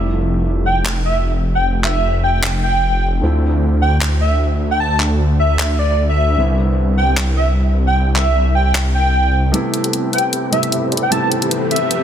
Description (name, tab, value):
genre	future bass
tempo	152 BPM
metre	4/4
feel	swing 53% on 16ths, half-time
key	A minor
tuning	A4 = 440 Hz
part	felt-muted upright piano	accompaniment	0.0-12.0 s	C3 to E4	-24 LUFS	equal	dub echo
part	wide detuned saw bass	bass	0.0-9.5 s	F1 to D2	-15 LUFS	equal	chorus
part	airy dreamy lead	melody	0.7-12.0 s	D5 to A5	-19 LUFS	equal	chorus, ping-pong delay
part	pop drum kit	drums	0.9-12.0 s	finger snaps, handclaps, hi-hat	-22 LUFS	left 1 dB	studio reverb, soft clipping on snare
part	supersaw chords	riff	9.5-12.0 s	C4 to A5	-22 LUFS	equal	phaser, low-pass filter
part	riser	sound effects	10.4-12.0 s	none	-31 LUFS	equal	none
room	light reverb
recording	dense, heavily limited modern master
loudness	-14 LUFS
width	side -9 dB against mid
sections	0.0-9.5 A section; 9.5-12.0 B section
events	build-up 9.5-12.0; filter sweep on supersaw synth 9.5-12.0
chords	0.0 Fmaj9; 3.2 Dm9; 6.4 Cmaj9; 9.5 Am9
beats	| 0.07 0.46 0.85 1.25 | 1.65 2.04 2.43 2.83 | 3.22 3.62 4.01 4.41 | 4.80 5.20 5.59 5.99 | 6.38 6.78 7.17 7.57 | 7.96 8.36 8.75 9.14 | 9.54 9.93 10.33 10.72 | 11.12 11.51 11.91